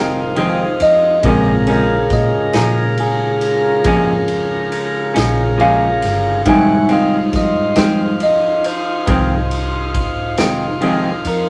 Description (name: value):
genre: slow blues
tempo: 46 BPM (dotted quarters)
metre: 12/8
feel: straight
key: F minor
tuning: A4 = 440 Hz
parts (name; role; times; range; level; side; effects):
- bell-like tine electric piano; accompaniment; 0.0-11.5 s; Db3 to Ab5; -19 LUFS; equal; phaser
- electric guitar through a small old amp; accompaniment; 0.0-11.1 s; F2 to Db4; -21 LUFS; equal; tremolo
- tonewheel organ; sustained chords; 0.0-11.5 s; Db3 to Db5; -22 LUFS; equal; slow rotary speaker
- vintage muted fingered electric bass; bass; 0.0-11.5 s; F1 to Bb2; -25 LUFS; equal; none
- raw garage drum kit; drums; 0.4-11.5 s; kick drum, ride cymbal, snare drum; -25 LUFS; equal; none
room: wet small room ambience, RT60 0.5 s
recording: none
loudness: -15 LUFS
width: mono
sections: 0.0-11.5 A section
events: tine electric piano solo 0.0-11.5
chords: 0.0 Fm7; 1.2 Bbm7; 6.5 Fm7